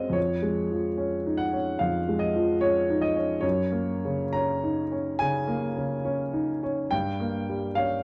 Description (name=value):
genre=classical, romantic character piece for solo piano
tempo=62-75 BPM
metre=4/4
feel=rubato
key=unclear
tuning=A4 = 440 Hz
part: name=warm concert grand piano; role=solo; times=0.0-8.0 s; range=F2 to Bb5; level=-27 LUFS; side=equal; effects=none
room=light reverb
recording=dark, warm production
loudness=-27 LUFS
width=mono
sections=0.0-8.0 A section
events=none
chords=0.2 Db/F; 3.4 Gb; 6.9 Eb7/G (rootless)